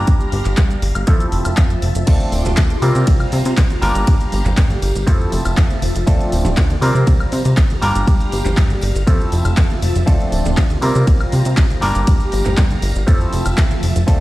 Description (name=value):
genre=filtered disco house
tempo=120 BPM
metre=4/4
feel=straight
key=G dorian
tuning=A4 = 441 Hz
part: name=overdriven clav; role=accompaniment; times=0.0-14.2 s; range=F3 to Bb4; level=-23 LUFS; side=equal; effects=phaser, sidechain pumping
part: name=phased string machine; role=sustained chords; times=0.0-14.2 s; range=F3 to C6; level=-26 LUFS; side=equal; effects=ensemble chorus, phaser, sidechain pumping
part: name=plucky analog bass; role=bass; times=0.0-14.2 s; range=D1 to C3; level=-18 LUFS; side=equal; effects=sidechain pumping
part: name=electronic kick drum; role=drums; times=0.1-14.2 s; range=none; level=-14 LUFS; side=equal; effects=overdrive
part: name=punchy analog drum machine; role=drums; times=0.1-14.2 s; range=crash cymbal, handclaps, hi-hat, ride cymbal, shaker, woodblock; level=-27 LUFS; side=left 1 dB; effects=overdrive
part: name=tambourine and congas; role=percussion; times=2.1-14.2 s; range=none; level=-28 LUFS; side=right 2 dB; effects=sidechain pumping on perc
room=digital ambience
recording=played on a big sound system in a bare room, stone room reverb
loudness=-13 LUFS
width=side -17 dB against mid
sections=0.0-14.2 A section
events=none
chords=0.0 Gm7; 1.1 Fmaj7; 2.1 Dm7; 2.8 C7sus4; 3.8 Gm7; 5.1 Fmaj7; 6.1 Dm7; 6.8 C7sus4; 7.8 Gm7; 9.1 Fmaj7; 10.1 Dm7; 10.8 C7sus4; 11.8 Gm7; 13.1 Fmaj7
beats=| 0.07 0.57 1.07 1.57 | 2.08 2.58 3.08 3.58 | 4.08 4.58 5.08 5.58 | 6.08 6.58 7.08 7.58 | 8.07 8.57 9.07 9.57 | 10.07 10.57 11.07 11.57 | 12.07 12.57 13.07 13.57 | 14.07